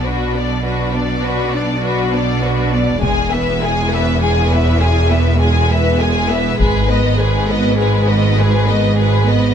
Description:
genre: cinematic, epic orchestral film score.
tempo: 67 BPM (dotted quarters).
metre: 6/8.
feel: straight.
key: unclear.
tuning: A4 = 440 Hz.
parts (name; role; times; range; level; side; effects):
warm symphonic violin section; melody; 0.0-9.5 s; B4 to G#5; -21 LUFS; left 3 dB; none.
warm symphonic violin section; second line; 0.0-9.5 s; D4 to B4; -21 LUFS; left 4 dB; none.
clear studio viola section; accompaniment; 0.0-9.5 s; G#3 to D4; -22 LUFS; right 3 dB; none.
clear symphonic cello section; bass; 0.0-9.5 s; E2 to B2; -18 LUFS; right 2 dB; none.
rich symphonic double bass section; bass; 0.0-9.5 s; E1 to B1; -18 LUFS; right 2 dB; none.
taiko ensemble; drums; 3.0-7.7 s; none; -20 LUFS; left 2 dB; none.
room: light reverb.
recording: close, detailed microphones.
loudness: -13 LUFS.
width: side -8 dB against mid.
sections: 0.0-9.5 A section.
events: none.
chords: 0.0 Bm; 3.0 E; 6.6 G#m.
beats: 0.35 | 1.24 2.13 | 3.02 3.91 | 4.80 5.70 | 6.59 7.48 | 8.37 9.27.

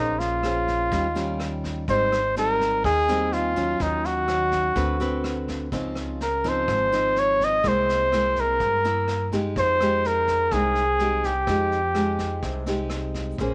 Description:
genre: bossa nova.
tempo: 125 BPM.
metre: 4/4.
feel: straight.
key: F minor.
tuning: A4 = 439 Hz.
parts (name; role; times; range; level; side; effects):
warm flugelhorn; melody; 0.0-12.7 s; Eb4 to Eb5; -24 LUFS; equal; none.
nylon-string guitar; accompaniment; 0.0-13.5 s; Ab2 to C5; -31 LUFS; equal; none.
upright bass; bass; 0.0-13.5 s; Ab1 to G2; -33 LUFS; equal; none.
vintage brush drum kit; drums; 0.2-13.5 s; kick drum, rim click, snare drum; -38 LUFS; equal; none.
room: light reverb, small room ambience.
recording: none.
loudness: -23 LUFS.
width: mono.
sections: 0.0-13.4 A section.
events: none.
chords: 0.0 Bbm9; 0.9 Eb9; 1.9 Abmaj7; 3.8 Ebm9; 4.8 D6; 5.7 Dbmaj9; 7.6 C7b13; 9.6 Fm9.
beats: 0.45 0.93 1.40 | 1.88 2.36 2.84 3.32 | 3.80 4.28 4.76 5.24 | 5.72 6.20 6.68 7.16 | 7.64 8.12 8.60 9.08 | 9.56 10.04 10.52 11.00 | 11.47 11.96 12.43 12.91 | 13.39.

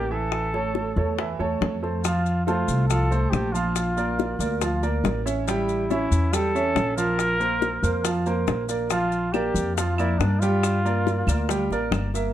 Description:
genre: latin, Cuban son and guajira.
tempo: 140 BPM.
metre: 4/4.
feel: straight.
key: unclear.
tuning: A4 = 441 Hz.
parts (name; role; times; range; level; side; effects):
breathy trumpet; melody; 0.0-11.7 s; D4 to Bb4; -28 LUFS; equal; none.
clear concert grand piano; arpeggios; 0.0-12.3 s; E3 to G5; -26 LUFS; right 3 dB; none.
upright bass; bass; 0.0-12.3 s; G1 to G2; -26 LUFS; equal; none.
bongos; percussion; 0.3-12.3 s; none; -29 LUFS; left 8 dB; none.
maracas; percussion; 2.0-12.3 s; none; -36 LUFS; left 9 dB; none.
claves; percussion; 9.3-12.1 s; none; -37 LUFS; right 4 dB; none.
room: moderate studio reverb, RT60 0.6 s.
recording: dark, warm production.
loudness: -21 LUFS.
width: side -12 dB against mid.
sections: 0.0-12.3 A section.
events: none.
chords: 0.3 A; 2.0 F; 3.8 Bb; 5.5 A7; 7.2 Bbsus2; 8.9 Bb; 10.6 Gm.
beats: | 0.33 0.76 1.19 1.61 | 2.04 2.47 2.90 3.33 | 3.76 4.19 4.62 5.05 | 5.48 5.91 6.33 6.76 | 7.19 7.62 8.05 8.48 | 8.91 9.34 9.77 10.20 | 10.63 11.06 11.49 11.92.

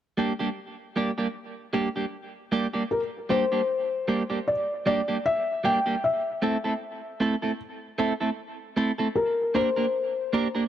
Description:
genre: reggae.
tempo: 77 BPM.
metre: 4/4.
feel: swing 56% on 16ths.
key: G dorian.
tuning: A4 = 438 Hz.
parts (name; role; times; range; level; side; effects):
clean electric guitar; accompaniment; 0.2-10.6 s; G3 to Bb4; -27 LUFS; right 2 dB; wide subtle chorus, dub echo.
felt-muted upright piano; melody; 2.9-10.7 s; Bb4 to G5; -25 LUFS; left 2 dB; dub echo.
room: light reverb, small room reverb.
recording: dry, close 1970s-style studio recording.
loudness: -24 LUFS.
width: side -10 dB against mid.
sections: 0.0-2.9 A section; 2.9-10.7 B section.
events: none.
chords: 0.0 Gm; 6.0 Am; 9.2 Gm.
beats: 0.56 1.34 2.12 | 2.90 3.69 4.47 5.25 | 6.03 6.81 7.59 8.37 | 9.15 9.93.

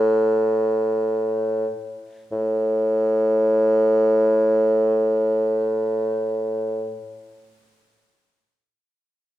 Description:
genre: classical, baroque-style fantasia for unaccompanied bassoon.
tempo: free time.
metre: none.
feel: none.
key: unclear.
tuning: A4 = 440 Hz.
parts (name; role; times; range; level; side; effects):
warm bassoon; solo; 0.0-7.0 s; A2; -18 LUFS; equal; none.
room: wet recital hall reverb, RT60 1.5 s.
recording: heard from further back in the room.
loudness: -18 LUFS.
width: side -14 dB against mid.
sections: 0.0-2.3 A section; 2.3-6.9 B section.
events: slowing down 0.0-2.3.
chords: none.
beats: free time.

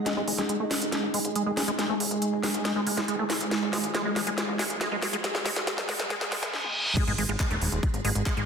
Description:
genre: psychedelic trance.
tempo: 139 BPM.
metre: 4/4.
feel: straight.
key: unclear.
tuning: A4 = 440 Hz.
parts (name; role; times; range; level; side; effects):
swarming drone; sustained chords; 0.0-8.5 s; G#3 to G#4; -33 LUFS; right 2 dB; built-in reverb, sidechain pumping.
airy breathy pad; texture; 0.0-6.5 s; G#3 to G#5; -35 LUFS; left 1 dB; chorus, sidechain pumping.
liquid acid bass; riff; 0.1-8.4 s; G#3 to A3; -32 LUFS; equal; chorus, auto-pan, sidechain pumping, tape echo.
garage drum kit; drums; 0.1-8.5 s; crash cymbal, handclaps, hi-hat, snare drum, toms; -29 LUFS; equal; soft clipping on snare.
riser and reverse cymbal; sound effects; 1.8-7.0 s; none; -35 LUFS; equal; none.
plucky analog bass; bass; 0.2-8.4 s; D#1 to G#1; -34 LUFS; left 1 dB; high-pass filter.
electronic kick drum; drums; 7.0-8.3 s; none; -28 LUFS; equal; none.
room: moderate plate reverb, RT60 1.6 s, digital ambience.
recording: dense, heavily limited modern master, high-pass filter.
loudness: -25 LUFS.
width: side -6 dB against mid.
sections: 0.1-7.0 A section; 7.0-8.5 B section.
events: build-up 0.1-7.0; drum fill 0.1-6.5, 6.5-7.0; filter sweep on acid bass 0.1-7.0; filter sweep on synth drone 0.1-7.0; filter sweep 0.1-7.0; reverse cymbal 6.1-7.0; drop 7.0-8.5.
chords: 0.1 G#5.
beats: | 0.06 0.49 0.92 1.35 | 1.79 2.22 2.65 3.08 | 3.51 3.94 4.38 4.81 | 5.24 5.67 6.10 6.54 | 6.97 7.40 7.83 8.26.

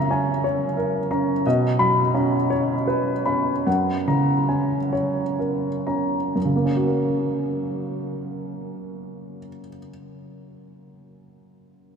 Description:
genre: neoclassical minimalist piano.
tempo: 40-60 BPM (dotted quarters).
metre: 6/8.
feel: rubato.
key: F# major.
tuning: A4 = 444 Hz.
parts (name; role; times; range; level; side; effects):
warm upright piano; solo; 0.0-12.0 s; F#2 to B5; -21 LUFS; equal; none.
room: wet cathedral reverb, RT60 6.1 s.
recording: in a vast, echoing space.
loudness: -20 LUFS.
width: side -6 dB against mid.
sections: 0.0-6.4 A section; 6.4-12.0 B section.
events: slowing down 0.4-6.4.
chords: 0.0 F#7; 1.4 Badd9; 3.7 F#.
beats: 0.43 | 1.44 2.50 | 3.66 4.94 | 6.35 7.83 | 9.31 10.79.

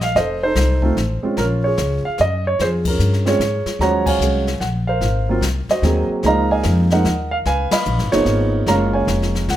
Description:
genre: jazz piano trio.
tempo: 148 BPM.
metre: 3/4.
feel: swing 65% on 8ths.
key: Bb minor.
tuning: A4 = 440 Hz.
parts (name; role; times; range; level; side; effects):
warm grand piano; melody; 0.0-9.6 s; F3 to Cb6; -18 LUFS; right 2 dB; none.
upright bass; bass; 0.0-9.6 s; F1 to Ab2; -20 LUFS; left 1 dB; none.
jazz brush drum kit; drums; 0.0-9.6 s; brushed snare drum, crash cymbal, hi-hat, kick drum, ride cymbal, snare drum; -26 LUFS; left 4 dB; none.
room: light reverb.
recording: none.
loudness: -16 LUFS.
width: side -12 dB against mid.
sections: 0.0-3.8 A section; 3.8-9.6 B section.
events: band accent 2.8, 4.0, 7.7.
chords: 0.2 F7; 1.4 Bbm7; 3.8 Ebm11; 5.0 Ab13; 6.2 Db69; 7.5 Db13; 8.7 Gbmaj9.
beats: | 0.16 0.56 0.97 | 1.37 1.78 2.19 | 2.59 3.00 3.40 | 3.81 4.21 4.62 | 5.03 5.43 5.84 | 6.24 6.65 7.06 | 7.46 7.87 8.27 | 8.68 9.09 9.49.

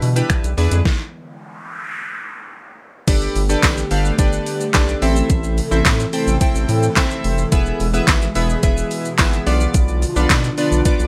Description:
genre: dance-pop.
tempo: 108 BPM.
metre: 4/4.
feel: straight.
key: unclear.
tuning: A4 = 442 Hz.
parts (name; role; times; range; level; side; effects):
chorused retro synth keys; accompaniment; 0.0-11.1 s; B3 to G5; -24 LUFS; equal; sidechain pumping.
airy breathy pad; sustained chords; 0.0-11.1 s; B2 to A4; -28 LUFS; equal; chorus, sidechain pumping.
round analog bass; bass; 0.0-11.1 s; E1 to B2; -22 LUFS; equal; sidechain pumping.
pop drum kit; drums; 0.0-11.1 s; crash cymbal, finger snaps, handclaps, hi-hat, kick drum, shaker, snare drum; -20 LUFS; equal; overdrive.
noise sweep; sound effects; 1.3-3.1 s; none; -33 LUFS; equal; none.
tambourine; percussion; 3.6-10.4 s; none; -38 LUFS; equal; none.
room: light reverb.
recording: none.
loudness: -17 LUFS.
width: mono.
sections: 0.0-3.1 A section; 3.1-11.1 B section.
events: stop 0.9-3.1; noise sweep 1.3-3.1.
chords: 0.0 G6/B; 0.6 E7; 3.1 Gadd9; 5.0 Am; 7.5 E; 9.5 Bdim.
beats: 0.30 | 0.85 1.41 1.97 2.52 | 3.08 3.63 4.19 4.74 | 5.30 5.85 6.41 6.96 | 7.52 8.08 8.63 9.19 | 9.74 10.30 10.85.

